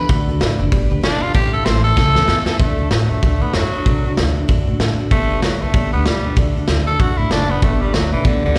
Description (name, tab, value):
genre	rockabilly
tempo	191 BPM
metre	4/4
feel	swing 59% on 8ths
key	D major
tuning	A4 = 440 Hz
part	raspy tenor saxophone	melody	0.0-8.6 s	D3 to C5	-24 LUFS	equal	slapback echo, tape echo
part	picked steel-string acoustic guitar	accompaniment	0.0-8.6 s	A2 to B4	-28 LUFS	equal	slapback echo
part	upright bass	bass	0.0-8.6 s	F#1 to A2	-21 LUFS	equal	none
part	raw garage drum kit	drums	0.1-8.6 s	hi-hat, kick drum, snare drum	-20 LUFS	equal	none
room	small room ambience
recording	live gig heard through the venue's PA, recital hall reverb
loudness	-17 LUFS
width	mono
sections	0.0-2.6 A section; 2.6-8.6 B section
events	tenor saxophone solo 0.0-2.6; drum fill 2.0-2.6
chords	0.1 D; 0.7 G; 1.3 A; 2.6 D; 5.1 G; 6.4 D; 7.6 G